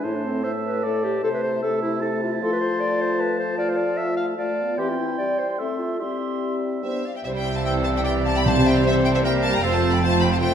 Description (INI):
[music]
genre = quick classical-period movement for symphony orchestra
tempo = 151 BPM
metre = 3/4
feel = straight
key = C major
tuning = A4 = 440 Hz
[part]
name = mellow clarinet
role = second line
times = 0.0-10.5 s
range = C4 to F5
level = -27 LUFS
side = left 1 dB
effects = none
[part]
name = silver concert flute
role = second line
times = 0.0-10.5 s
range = C5 to C6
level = -32 LUFS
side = left 1 dB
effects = none
[part]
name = warm oboe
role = second line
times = 0.0-10.5 s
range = A4 to A5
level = -30 LUFS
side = right 2 dB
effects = none
[part]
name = mellow bassoon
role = accompaniment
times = 0.0-10.5 s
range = A2 to A3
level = -29 LUFS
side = right 2 dB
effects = none
[part]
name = mellow French horn section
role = sustained chords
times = 0.0-10.5 s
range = A3 to G4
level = -27 LUFS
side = left 4 dB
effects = none
[part]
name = clear studio violin section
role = melody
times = 6.8-10.5 s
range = E5 to B5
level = -26 LUFS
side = left 3 dB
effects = none
[part]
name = rich studio viola section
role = accompaniment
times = 7.2-10.5 s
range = E3 to C4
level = -27 LUFS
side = right 4 dB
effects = none
[part]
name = clear studio double bass section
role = bass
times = 7.2-10.5 s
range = F1 to C2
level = -26 LUFS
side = right 3 dB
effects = none
[part]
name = rich symphonic cello section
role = bass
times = 7.2-10.5 s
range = F2 to C3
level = -26 LUFS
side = right 5 dB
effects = none
[part]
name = clear studio violin section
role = second line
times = 7.3-10.5 s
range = E4 to D5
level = -30 LUFS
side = equal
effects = none
[part]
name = timpani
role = percussion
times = 8.5-9.0 s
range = C3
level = -26 LUFS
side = equal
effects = none
[sound]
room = wet recital hall reverb, RT60 1.6 s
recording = none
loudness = -20 LUFS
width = side -8 dB against mid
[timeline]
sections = 0.0-7.3 A section; 7.3-10.5 B section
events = none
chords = 0.0 Am; 1.2 Am/C; 2.4 F; 3.6 Dm/F; 4.8 C/E; 5.6 Am; 6.0 C/G; 6.8 G; 7.3 C; 8.5 C7; 9.6 F